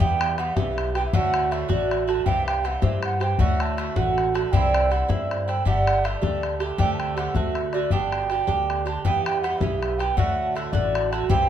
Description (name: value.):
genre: celtic folk, Celtic jig.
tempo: 106 BPM (dotted quarters).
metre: 6/8.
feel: straight.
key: unclear.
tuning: A4 = 440 Hz.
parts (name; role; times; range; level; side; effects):
mellow baroque flute; melody; 0.0-11.5 s; D5 to A5; -25 LUFS; right 2 dB; none.
Irish bouzouki; accompaniment; 0.0-11.5 s; G2 to G4; -26 LUFS; right 5 dB; none.
upright bass; bass; 0.0-11.5 s; G1 to G2; -27 LUFS; left 1 dB; none.
bodhran; percussion; 0.0-11.4 s; none; -27 LUFS; left 4 dB; none.
room: moderate studio reverb, RT60 0.5 s.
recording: minimal, uncompressed stereo recording.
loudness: -21 LUFS.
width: side -10 dB against mid.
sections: 0.0-9.0 A section; 9.0-11.5 A section.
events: none.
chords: 0.0 Em; 1.1 D; 2.3 C; 3.4 D; 4.5 Cadd9; 5.7 Gsus2; 6.8 D7sus4; 7.3 D7; 7.9 G; 9.0 Em; 10.2 D.